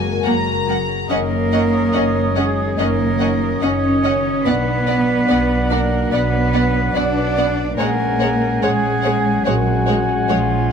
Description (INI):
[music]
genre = cinematic, emotional film score for orchestra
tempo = 72 BPM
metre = 4/4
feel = rubato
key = F# major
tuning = A4 = 440 Hz
[part]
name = warm cello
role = melody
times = 0.0-10.7 s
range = E#4 to D5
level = -25 LUFS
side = right 2 dB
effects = none
[part]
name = warm studio violin section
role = melody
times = 0.0-10.4 s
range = F#5 to A#5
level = -29 LUFS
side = left 3 dB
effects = none
[part]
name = mellow French horn section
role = sustained chords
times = 0.0-10.7 s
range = D#3 to D4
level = -25 LUFS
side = left 7 dB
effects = none
[part]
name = concert harp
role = arpeggios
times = 0.0-10.7 s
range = F#2 to D#5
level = -27 LUFS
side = left 11 dB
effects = none
[part]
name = dark studio double bass section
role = bass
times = 0.0-10.7 s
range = F#1 to B1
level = -23 LUFS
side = right 4 dB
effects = none
[part]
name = warm studio cello section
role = bass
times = 0.0-10.7 s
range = E#3 to D4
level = -22 LUFS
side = right 2 dB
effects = none
[part]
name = dark studio violin section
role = second line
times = 0.2-10.4 s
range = C#5 to F#5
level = -27 LUFS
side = left 1 dB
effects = none
[part]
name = rich studio viola section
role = accompaniment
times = 0.3-10.4 s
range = G#3 to D4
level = -26 LUFS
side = right 2 dB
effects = none
[part]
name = mellow clarinet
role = second line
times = 1.1-10.7 s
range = C#5 to F#5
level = -26 LUFS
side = left 3 dB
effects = none
[part]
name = mellow cor anglais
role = second line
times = 1.1-10.7 s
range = D#5 to G#5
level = -26 LUFS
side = right 1 dB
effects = none
[sound]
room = moderate concert hall reverb, RT60 2.3 s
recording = none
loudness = -15 LUFS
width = side -6 dB against mid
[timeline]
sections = 0.0-10.7 A section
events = none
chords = 0.0 F#add9; 1.1 D#m7/F#; 4.5 Bm; 7.8 F#add9/A#